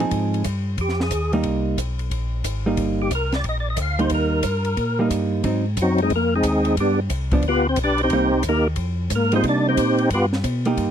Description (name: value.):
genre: soul jazz organ trio.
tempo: 180 BPM.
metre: 4/4.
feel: swing 64% on 8ths.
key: C minor.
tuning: A4 = 440 Hz.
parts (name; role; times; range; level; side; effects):
vintage hollow-body jazz guitar; accompaniment; 0.0-10.9 s; F3 to Ab4; -22 LUFS; right 3 dB; none.
mellow tonewheel organ; bass; 0.0-10.9 s; G1 to C3; -24 LUFS; equal; slow rotary speaker.
compact cocktail drum kit; drums; 0.0-10.9 s; hi-hat, kick drum, ride cymbal, snare drum; -29 LUFS; left 1 dB; none.
percussive tonewheel organ; melody; 0.8-10.3 s; Gb3 to F5; -20 LUFS; equal; slow rotary speaker, overdrive, chorus vibrato.
room: little or no reverb.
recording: dry, close 1970s-style studio recording.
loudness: -19 LUFS.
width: side -9 dB against mid.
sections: 0.0-10.8 A section.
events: tonewheel organ solo 0.0-10.8.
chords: 0.1 Fm7; 1.4 Cm7; 5.4 Ab7; 6.8 G7; 8.1 Cm7; 8.8 Fm7; 9.4 Cm7; 10.1 G7.